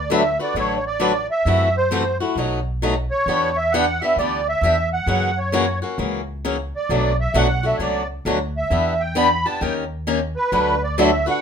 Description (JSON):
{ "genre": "acoustic string swing (jazz manouche)", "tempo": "132 BPM", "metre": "4/4", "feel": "swing 63% on 8ths", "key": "D major", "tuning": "A4 = 440 Hz", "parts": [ { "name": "musette accordion", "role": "melody", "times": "0.0-11.4 s", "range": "B4 to B5", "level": "-20 LUFS", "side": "right 2 dB", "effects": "none" }, { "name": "upright bass", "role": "bass", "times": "0.0-11.2 s", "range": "A1 to F#2", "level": "-25 LUFS", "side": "equal", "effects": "none" }, { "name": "picked swing-style acoustic guitar", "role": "accompaniment", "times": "0.1-11.4 s", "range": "B2 to B4", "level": "-21 LUFS", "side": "left 2 dB", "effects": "none" } ], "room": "moderate studio reverb, RT60 0.6 s", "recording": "minimal, uncompressed stereo recording", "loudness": "-18 LUFS", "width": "side -7 dB against mid", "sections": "0.0-11.4 A section", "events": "none", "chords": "0.0 D6; 1.5 F#m7b5; 2.4 B7; 3.3 Em7; 5.1 F#7; 6.9 Bm7; 8.7 Em7; 9.6 Eb7; 10.5 D6" }